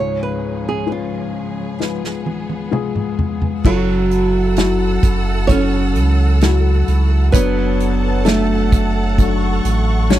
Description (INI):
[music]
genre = pop ballad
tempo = 65 BPM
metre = 4/4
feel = straight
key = F# minor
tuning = A4 = 440 Hz
[part]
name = nylon-string guitar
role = melody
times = 0.0-10.2 s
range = F#3 to C#5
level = -21 LUFS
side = right 5 dB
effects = none
[part]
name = felt-muted upright piano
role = accompaniment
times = 0.0-10.2 s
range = C#2 to E5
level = -21 LUFS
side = left 9 dB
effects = none
[part]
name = clear studio string section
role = sustained chords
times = 0.0-10.2 s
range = E#3 to E6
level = -27 LUFS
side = right 2 dB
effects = none
[part]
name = unplugged drum kit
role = drums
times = 1.8-10.2 s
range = crash cymbal, hi-hat, kick drum, snare drum, toms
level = -17 LUFS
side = right 1 dB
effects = none
[part]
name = warm sub bass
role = bass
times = 3.6-10.2 s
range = F#1 to C#2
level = -17 LUFS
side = right 1 dB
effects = none
[sound]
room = little or no reverb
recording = dry, close 1970s-style studio recording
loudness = -14 LUFS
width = side -13 dB against mid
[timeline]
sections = 0.0-3.6 A section; 3.6-10.2 B section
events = drum fill 1.8-3.6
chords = 0.0 C#; 3.6 F#m7; 7.3 Dmaj7/F#